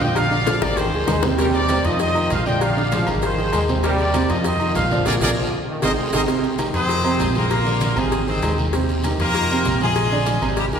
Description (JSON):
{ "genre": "latin, salsa", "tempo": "196 BPM", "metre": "4/4", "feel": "straight", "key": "Eb major", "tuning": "A4 = 440 Hz", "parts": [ { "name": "bright trumpet section", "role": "melody", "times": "0.0-6.2 s", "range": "G4 to G5", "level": "-23 LUFS", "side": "equal", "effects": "none" }, { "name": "clear trombone section", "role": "second line", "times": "0.0-6.1 s", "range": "Eb3 to Ab3", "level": "-27 LUFS", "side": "left 1 dB", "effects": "none" }, { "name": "warm upright piano", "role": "accompaniment", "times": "0.0-10.8 s", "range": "C3 to D5", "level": "-23 LUFS", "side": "right 3 dB", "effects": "none" }, { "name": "fingered electric bass", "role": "bass", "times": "0.0-10.8 s", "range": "Ab1 to F2", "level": "-24 LUFS", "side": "equal", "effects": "none" }, { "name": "congas", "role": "percussion", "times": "0.0-10.8 s", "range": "none", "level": "-30 LUFS", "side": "left 1 dB", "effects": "none" }, { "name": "guiro", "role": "percussion", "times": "0.0-10.8 s", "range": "none", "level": "-36 LUFS", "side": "left 3 dB", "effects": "none" }, { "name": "maracas", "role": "percussion", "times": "0.0-10.8 s", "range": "none", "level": "-37 LUFS", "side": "right 4 dB", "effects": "none" }, { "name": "agogo bells and timbales", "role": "percussion", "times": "0.2-10.6 s", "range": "none", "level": "-30 LUFS", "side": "right 2 dB", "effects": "none" }, { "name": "cowbell and bongos", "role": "percussion", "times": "0.2-10.7 s", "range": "none", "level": "-29 LUFS", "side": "left 5 dB", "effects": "none" }, { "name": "brilliant horn section", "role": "melody", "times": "6.7-10.8 s", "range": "G3 to C5", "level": "-22 LUFS", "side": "left 2 dB", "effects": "none" } ], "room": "wet concert hall reverb, RT60 2.1 s", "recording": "recorded in a church or concert hall", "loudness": "-17 LUFS", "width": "side -7 dB against mid", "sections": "0.0-6.3 A section; 6.3-10.8 B section", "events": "drum fill 0.5-1.4, 5.1-6.3; band accent 5.1-6.3", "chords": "0.2 Bb7; 0.8 Ab; 1.4 Eb6; 2.0 F5; 2.6 Bb7; 3.2 Ab; 3.8 Eb6; 4.5 F5; 5.1 Bb; 5.7 Abadd9; 6.3 Eb6; 6.9 Fm7; 7.5 Bb7; 8.1 Ab; 8.7 Eb6; 9.3 Fm7; 10.0 Bb7", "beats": "| 0.16 0.47 0.77 1.08 | 1.39 1.69 2.00 2.31 | 2.61 2.92 3.23 3.53 | 3.84 4.14 4.45 4.76 | 5.06 5.37 5.67 5.98 | 6.29 6.59 6.90 7.21 | 7.51 7.82 8.12 8.43 | 8.73 9.04 9.35 9.65 | 9.96 10.26 10.57" }